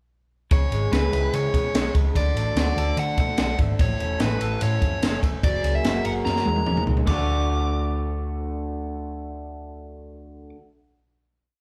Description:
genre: indie rock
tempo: 146 BPM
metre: 4/4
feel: straight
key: D lydian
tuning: A4 = 440 Hz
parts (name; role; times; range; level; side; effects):
- overdriven electric guitar; melody; 0.5-10.5 s; B4 to D6; -31 LUFS; equal; none
- electric guitar through a small old amp; riff; 0.5-10.6 s; A2 to A#4; -34 LUFS; equal; spring reverb
- electric guitar through a small old amp; riff; 0.5-10.6 s; E3 to A4; -34 LUFS; equal; none
- hollow-body short-scale picked electric bass; bass; 0.5-10.5 s; E1 to D3; -28 LUFS; equal; none
- compact cocktail drum kit; drums; 0.5-7.2 s; crash cymbal, kick drum, ride cymbal, snare drum, toms; -26 LUFS; equal; none
room: moderate large studio reverb, RT60 0.9 s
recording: band playing live in one room, faint mains hum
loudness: -23 LUFS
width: mono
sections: 0.5-7.1 pre-chorus; 7.1-10.4 final chord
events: drum fill 6.3-7.1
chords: 0.5 C#m; 2.2 D; 3.8 A; 5.4 F#add9; 7.1 D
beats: | 0.52 0.93 1.34 1.75 | 2.16 2.57 2.98 3.38 | 3.79 4.20 4.61 5.02 | 5.43 5.84 6.25 6.67 | 7.08 7.49 7.90 8.31 | 8.72 9.13 9.54 9.95

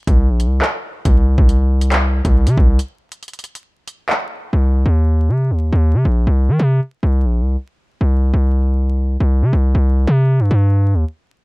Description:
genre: hip hop, drill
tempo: 138 BPM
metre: 4/4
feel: half-time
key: C minor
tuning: A4 = 445 Hz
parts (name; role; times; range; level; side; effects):
- distorted 808-style bass; bass; 0.1-11.0 s; Bb1 to Eb3; -13 LUFS; equal; distortion
- drill drum kit; drums; 0.1-4.2 s; handclaps, hi-hat, kick drum, rim click; -16 LUFS; equal; none
room: digital ambience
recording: dark, warm production, vinyl crackle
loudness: -13 LUFS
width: side -24 dB against mid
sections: 0.0-4.5 A section; 4.5-11.4 B section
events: break 2.8-4.5; stop 11.1-11.4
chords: none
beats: 0.18 0.62 | 1.05 1.49 1.92 2.36 | 2.79 3.23 3.66 4.10 | 4.53 4.96 5.40 5.83 | 6.27 6.70 7.14 7.57 | 8.01 8.44 8.88 9.31 | 9.75 10.18 10.62

